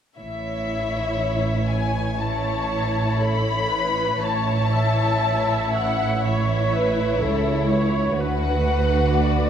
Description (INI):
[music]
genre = classical, slow romantic movement for string orchestra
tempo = 58-63 BPM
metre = 4/4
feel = rubato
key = A major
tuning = A4 = 442 Hz
[part]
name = muted symphonic violin section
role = melody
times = 0.2-9.5 s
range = E5 to B5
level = -26 LUFS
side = left 5 dB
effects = none
[part]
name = muted symphonic violin section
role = second line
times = 0.2-9.5 s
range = E4 to C#5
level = -27 LUFS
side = left 2 dB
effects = none
[part]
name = muted symphonic cello section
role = bass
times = 0.2-9.5 s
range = C#2 to A2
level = -26 LUFS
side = right 2 dB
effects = none
[part]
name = muted symphonic double bass section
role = bass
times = 0.2-9.5 s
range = A1 to D2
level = -26 LUFS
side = right 2 dB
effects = none
[part]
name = muted symphonic viola section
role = accompaniment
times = 2.2-9.5 s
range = A4 to E5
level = -26 LUFS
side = right 2 dB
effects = none
[sound]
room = moderate concert hall reverb, RT60 2.0 s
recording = none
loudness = -19 LUFS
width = side -8 dB against mid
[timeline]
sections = 0.2-9.5 A section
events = none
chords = 0.2 A; 8.2 Bm/D